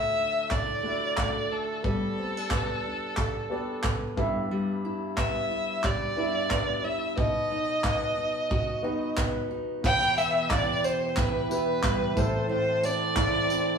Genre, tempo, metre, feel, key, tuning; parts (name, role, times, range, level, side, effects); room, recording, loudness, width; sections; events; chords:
acoustic pop; 90 BPM; 4/4; swing 55% on 16ths; E minor; A4 = 440 Hz
warm violin; melody; 0.0-13.8 s; A4 to G5; -28 LUFS; equal
fingerpicked steel-string acoustic guitar; accompaniment; 0.0-13.8 s; E2 to A4; -32 LUFS; right 1 dB
warm upright piano; accompaniment; 0.0-13.8 s; G2 to E5; -35 LUFS; left 1 dB
natural country drum kit; drums; 0.5-13.7 s; crash cymbal, handclaps, kick drum, tambourine; -29 LUFS; right 1 dB
tonewheel organ; sustained chords; 9.8-13.8 s; B2 to A4; -34 LUFS; right 1 dB; chorus vibrato
moderate stone room reverb, RT60 1.0 s; rough rehearsal-room recording, studio reverb; -25 LUFS; side -6 dB against mid
0.0-9.8 A section; 9.8-13.8 B section
0.0 Dadd9; 1.8 Gadd9; 4.2 Em/G; 7.2 B; 9.8 Em; 12.2 Am